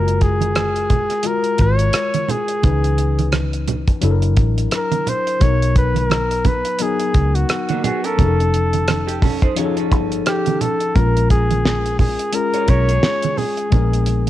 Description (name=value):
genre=lush 1970s-style soul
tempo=87 BPM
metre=4/4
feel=swing 58% on 16ths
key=F# major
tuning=A4 = 439 Hz
part: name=warm flugelhorn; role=melody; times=0.0-14.3 s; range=F#4 to C#5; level=-21 LUFS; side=equal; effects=cassette tape
part: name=tine electric piano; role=accompaniment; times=0.0-14.3 s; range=D#3 to B4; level=-24 LUFS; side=left 9 dB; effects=none
part: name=vintage muted fingered electric bass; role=bass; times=0.0-14.3 s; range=F1 to C#2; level=-18 LUFS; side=equal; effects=none
part: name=damped 70s drum kit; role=drums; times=0.1-14.3 s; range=hi-hat, kick drum, rim click, snare drum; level=-19 LUFS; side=equal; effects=cassette tape
part: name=congas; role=percussion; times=0.4-14.3 s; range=none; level=-24 LUFS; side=right 8 dB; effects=none
part: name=electric guitar through a small old amp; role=riff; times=7.7-13.7 s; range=A#3 to Db5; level=-26 LUFS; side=right 9 dB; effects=lush chorus
room=small room ambience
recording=home recording on cassette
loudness=-15 LUFS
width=side -13 dB against mid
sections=0.0-14.3 A section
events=none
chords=0.0 F#maj9; 2.6 C#m9; 4.0 F#7alt; 5.4 Bmaj7; 8.2 F7b13; 11.0 A#m7; 13.7 A#7b9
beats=0.56 1.25 1.95 | 2.64 3.33 4.03 4.72 | 5.41 6.11 6.80 7.49 | 8.18 8.88 9.57 10.26 | 10.95 11.64 12.34 13.03 | 13.72